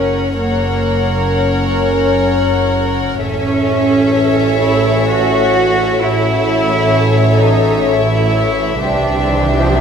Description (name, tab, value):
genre	cinematic, suspense film score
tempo	64 BPM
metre	3/4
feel	straight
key	unclear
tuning	A4 = 438 Hz
part	warm symphonic violin section	melody	0.0-9.8 s	E5 to F#5	-24 LUFS	left 3 dB	none
part	dark chamber violin section	second line	0.0-9.8 s	C5 to C#5	-22 LUFS	left 6 dB	none
part	warm chamber viola section	accompaniment	0.0-9.8 s	G4 to A#4	-22 LUFS	right 1 dB	none
part	mellow French horn section	sustained chords	0.0-9.8 s	G4 to E5	-21 LUFS	left 5 dB	none
part	warm trombone section	sustained chords	0.0-9.8 s	C3 to C#4	-21 LUFS	equal	none
part	dark symphonic double bass section	bass	0.0-9.8 s	F#1 to C2	-18 LUFS	right 3 dB	none
part	rich symphonic cello section	bass	0.0-9.8 s	A#3 to F#4	-17 LUFS	right 2 dB	none
part	overtone-sweeping drone	drone	0.0-9.8 s	F#1 to C2	-25 LUFS	equal	chorus, built-in reverb
part	vibraphone with medium hard mallets	texture	0.0-9.8 s	F#4 to A#5	-26 LUFS	right 1 dB	none
part	riser	sound effects	9.2-9.8 s	none	-22 LUFS	right 1 dB	none
room	wet scoring stage reverb, RT60 2.1 s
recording	none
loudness	-12 LUFS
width	side -7 dB against mid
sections	0.0-9.8 A section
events	riser 9.2-9.8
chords	0.0 F#; 3.2 A; 8.8 Cadd9